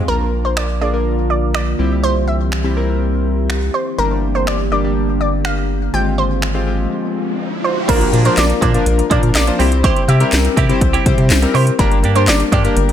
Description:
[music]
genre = dance-pop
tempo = 123 BPM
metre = 4/4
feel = straight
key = unclear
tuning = A4 = 442 Hz
[part]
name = chorused retro synth keys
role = accompaniment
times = 0.0-12.9 s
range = F3 to C5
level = -20 LUFS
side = left 4 dB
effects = sidechain pumping
[part]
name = glassy FM pad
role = sustained chords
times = 0.0-7.9 s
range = D3 to G4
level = -24 LUFS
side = equal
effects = ensemble chorus, built-in reverb, sidechain pumping
[part]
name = direct-recorded clean electric guitar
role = riff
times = 0.0, 7.9-12.9 s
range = F3 to G4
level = -22 LUFS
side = right 7 dB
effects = analog chorus
[part]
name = analog pluck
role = melody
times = 0.1-12.6 s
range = Bb4 to G5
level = -21 LUFS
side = right 2 dB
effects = chorus, ping-pong delay
[part]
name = round analog bass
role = bass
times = 0.1-12.9 s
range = G1 to C3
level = -17 LUFS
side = equal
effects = sidechain pumping
[part]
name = house drum kit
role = drums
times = 0.6-12.9 s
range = crash cymbal, finger snaps, handclaps, hi-hat, kick drum, snare drum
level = -18 LUFS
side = equal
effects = overdrive
[part]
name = riser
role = sound effects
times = 6.9-7.9 s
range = none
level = -25 LUFS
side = right 2 dB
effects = none
[part]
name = tambourine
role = percussion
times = 8.4-12.4 s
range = none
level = -28 LUFS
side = left 8 dB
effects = none
[sound]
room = digital ambience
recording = none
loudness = -13 LUFS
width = side -10 dB against mid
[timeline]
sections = 0.1-7.9 A section; 7.9-12.9 B section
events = riser 6.9-7.9; break 6.9-7.9; drop 7.9-12.9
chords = 0.1 Bb; 1.8 C; 4.0 Gm; 5.9 Fmadd9/Ab; 7.9 Bb; 9.6 C; 11.8 Gm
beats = | 0.08 0.57 1.06 1.55 | 2.04 2.52 3.01 3.50 | 3.99 4.47 4.96 5.45 | 5.94 6.42 6.91 7.40 | 7.89 8.38 8.86 9.35 | 9.84 10.33 10.81 11.30 | 11.79 12.28 12.77

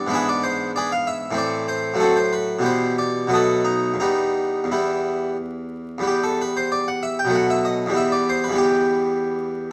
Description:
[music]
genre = classical, baroque-style suite movement for harpsichord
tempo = 85-97 BPM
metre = 3/4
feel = rubato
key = E minor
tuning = A4 = 440 Hz
[part]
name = harpsichord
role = solo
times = 0.0-9.7 s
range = E2 to G5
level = -22 LUFS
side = equal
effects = none
[sound]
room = moderate scoring stage reverb, RT60 1.6 s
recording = close, detailed microphones, vinyl crackle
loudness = -21 LUFS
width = mono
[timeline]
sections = 0.0-6.1 A section; 6.1-9.7 B section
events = none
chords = 0.1 E7/G#; 1.4 Am; 2.0 F#dim/A; 2.6 Em/B; 3.3 B7; 4.0 Em; 7.3 B7; 8.0 Em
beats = | 0.11 0.74 1.37 | 2.00 2.64 3.30 | 3.98 4.68 5.38 | 6.06 6.71 7.34 | 7.97 8.60 9.23

